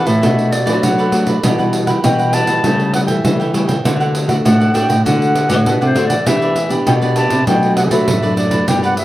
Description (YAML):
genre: samba and choro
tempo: 99 BPM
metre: 4/4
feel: straight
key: unclear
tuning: A4 = 441 Hz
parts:
  - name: breathy mellow silver concert flute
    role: melody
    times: 0.0-9.0 s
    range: D5 to A5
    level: -19 LUFS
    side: equal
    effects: none
  - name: cavaquinho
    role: accompaniment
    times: 0.0-9.0 s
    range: D4 to A5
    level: -23 LUFS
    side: right 2 dB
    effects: none
  - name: nylon-string guitar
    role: accompaniment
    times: 0.0-9.0 s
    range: F#2 to B4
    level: -18 LUFS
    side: left 1 dB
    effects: none
  - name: nylon-string guitar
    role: bass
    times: 0.1-9.0 s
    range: G2 to F#3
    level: -18 LUFS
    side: equal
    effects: none
  - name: pandeiro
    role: percussion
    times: 0.1-9.0 s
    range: none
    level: -19 LUFS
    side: right 2 dB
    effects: none
  - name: mellow clarinet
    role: second line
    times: 5.7-6.7 s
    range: B4 to E5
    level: -20 LUFS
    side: left 3 dB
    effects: none
room: moderate spring reverb, RT60 1.2 s, small room ambience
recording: none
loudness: -12 LUFS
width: side -15 dB against mid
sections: 0.0-9.0 A section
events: none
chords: 0.2 Bm7; 1.4 Emadd9/B; 2.6 A7/C#; 3.8 D; 6.3 Em7; 7.5 Bm7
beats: 0.23 0.83 | 1.44 2.04 2.64 3.25 | 3.85 4.45 5.06 5.66 | 6.26 6.87 7.47 8.07 | 8.68